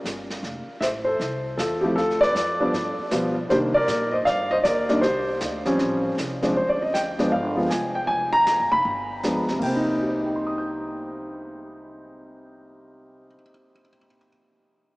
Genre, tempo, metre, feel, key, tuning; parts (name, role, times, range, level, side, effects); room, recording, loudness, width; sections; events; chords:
jazz piano trio; 157 BPM; 4/4; swing 64% on 8ths; C minor; A4 = 440 Hz
upright bass; bass; 0.0-13.3 s; F1 to C3; -35 LUFS; equal
jazz brush drum kit; drums; 0.1-9.9 s; brushed snare drum, crash cymbal, hi-hat, kick drum, snare drum; -35 LUFS; equal
warm grand piano; melody; 0.8-14.3 s; C3 to G6; -21 LUFS; equal
wet cathedral reverb, RT60 5.6 s; in a vast, echoing space, small speaker sound; -21 LUFS; side -22 dB against mid
0.0-6.6 A section; 6.6-9.6 B section; 9.6-12.7 C section
0.4 Fmaj7; 2.0 Dm; 2.7 G7; 3.5 Cm9; 5.8 A7alt; 6.6 D(b5, no3); 7.3 G7(no3); 8.1 Fsus24; 8.9 G7b9; 9.6 Cm7